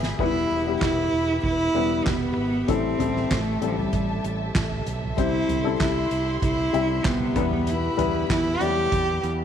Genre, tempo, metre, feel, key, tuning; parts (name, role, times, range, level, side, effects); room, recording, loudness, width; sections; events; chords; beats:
piano-driven pop; 96 BPM; 4/4; straight; A4 = 439 Hz
dark upright piano; accompaniment; 0.0-9.4 s; A2 to G#5; -27 LUFS; left 11 dB
warm symphonic string section; sustained chords; 0.0-9.4 s; G4 to C6; -35 LUFS; equal
fingered electric bass; bass; 0.0-9.4 s; E1 to E2; -30 LUFS; right 2 dB
soft-mallet drum kit; drums; 0.0-9.4 s; handclaps, hi-hat, kick drum, snare drum, toms; -28 LUFS; right 2 dB
warm cello; melody; 0.2-9.2 s; F3 to G4; -25 LUFS; right 2 dB
light reverb, small room reverb; 1960s-style stereo; -21 LUFS; side -8 dB against mid
0.2-9.4 A section
upright piano fill 0.0; drum fill 0.0
0.2 Em; 2.7 Am7; 5.2 C; 7.4 Em
| 0.19 0.81 1.44 2.06 | 2.69 3.31 3.93 4.56 | 5.18 5.80 6.43 7.05 | 7.68 8.30 8.92